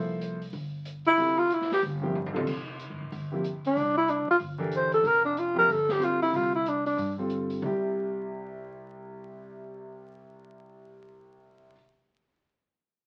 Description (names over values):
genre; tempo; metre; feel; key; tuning
modal jazz; 186 BPM; 4/4; swing 62% on 8ths; C mixolydian; A4 = 440 Hz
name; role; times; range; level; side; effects
warm concert grand piano; accompaniment; 0.0-11.7 s; C2 to C5; -36 LUFS; equal; none
upright bass; bass; 0.0-11.7 s; F1 to G2; -41 LUFS; equal; none
open jazz drum kit; drums; 0.2-7.7 s; crash cymbal, hi-hat, kick drum, snare drum, toms; -45 LUFS; equal; none
breathy tenor saxophone; melody; 1.1-7.2 s; D4 to C5; -26 LUFS; equal; none
room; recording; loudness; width
moderate studio reverb, RT60 0.5 s; very old 78 rpm record, vinyl crackle; -27 LUFS; mono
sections
0.0-7.6 A section; 7.6-10.2 B section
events
tenor saxophone solo 0.0-7.6; drum fill 2.1-2.5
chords
0.0 C9sus4; 7.6 C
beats
0.21 0.53 0.85 | 1.17 1.50 1.82 2.14 | 2.46 2.79 3.11 3.43 | 3.75 4.08 4.40 4.72 | 5.04 5.37 5.69 6.01 | 6.34 6.66 6.98 7.30 | 7.63 7.95 8.27 8.60 | 8.92 9.24 9.57 9.89